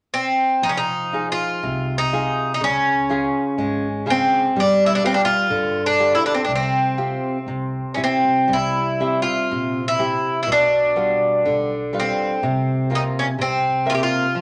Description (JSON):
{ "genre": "fado-style ballad", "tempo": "62 BPM", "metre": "2/4", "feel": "rubato", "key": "unclear", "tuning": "A4 = 440 Hz", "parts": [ { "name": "Irish bouzouki", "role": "melody", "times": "0.1-14.4 s", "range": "C4 to G4", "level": "-21 LUFS", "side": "equal", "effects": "none" }, { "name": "flamenco guitar", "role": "accompaniment", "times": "0.6-14.4 s", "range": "B2 to E5", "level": "-26 LUFS", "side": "equal", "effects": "none" }, { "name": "upright bass", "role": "bass", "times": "0.6-14.0 s", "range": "F1 to G2", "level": "-33 LUFS", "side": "equal", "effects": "none" } ], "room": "wet club reverb, RT60 0.8 s", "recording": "none", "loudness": "-20 LUFS", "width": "mono", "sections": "0.6-14.4 A section", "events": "none", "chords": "0.0 N.C.; 0.6 Fm7; 2.6 Db; 4.5 G7; 6.5 Csus4; 7.5 C; 10.5 G7/B; 12.4 C7sus4; 13.4 C7", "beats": "| 0.62 1.63 | 2.61 3.58 | 4.54 5.51 | 6.48 7.47 | 8.49 9.51 | 10.48 11.46 | 12.43 13.39 | 14.36" }